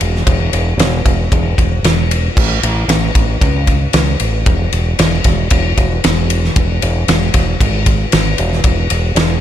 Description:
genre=rock, shoegaze and dream pop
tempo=115 BPM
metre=4/4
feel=straight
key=E major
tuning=A4 = 440 Hz
part: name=growling fingered electric bass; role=bass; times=0.0-9.4 s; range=E1 to C#2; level=-15 LUFS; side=equal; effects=overdrive
part: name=loose indie drum kit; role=drums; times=0.0-9.3 s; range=crash cymbal, kick drum, ride cymbal, snare drum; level=-14 LUFS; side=equal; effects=none
room=light reverb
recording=none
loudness=-11 LUFS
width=side -10 dB against mid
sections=0.0-9.4 A section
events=none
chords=none

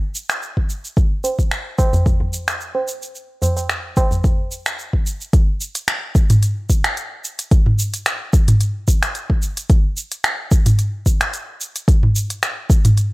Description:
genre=downtempo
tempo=110 BPM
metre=4/4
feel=swing 54% on 16ths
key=none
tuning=none
part: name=afro-pop drum kit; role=drums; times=0.1-13.1 s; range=finger snaps, hi-hat, shaker, toms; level=-19 LUFS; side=equal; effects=small room ambience
part: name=electronic kick drum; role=drums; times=0.6-12.8 s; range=none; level=-15 LUFS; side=equal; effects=small room ambience
part: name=tabla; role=percussion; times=1.2-4.2 s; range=none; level=-21 LUFS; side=right 1 dB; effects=none
room=little or no reverb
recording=dry, gritty hardware recording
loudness=-16 LUFS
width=side -21 dB against mid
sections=0.0-5.3 A section; 5.3-13.1 B section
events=none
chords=none

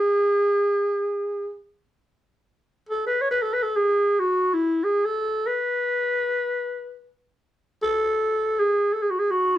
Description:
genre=Turkish makam ensemble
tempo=free time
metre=none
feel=none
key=unclear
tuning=A4 = 436 Hz
part: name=growling clarinet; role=solo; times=0.0-9.6 s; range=E4 to C#5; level=-21 LUFS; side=equal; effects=none
room=moderate small room reverb, RT60 0.5 s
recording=band playing live in one room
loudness=-21 LUFS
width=side -13 dB against mid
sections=0.0-9.6 A section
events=none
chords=none

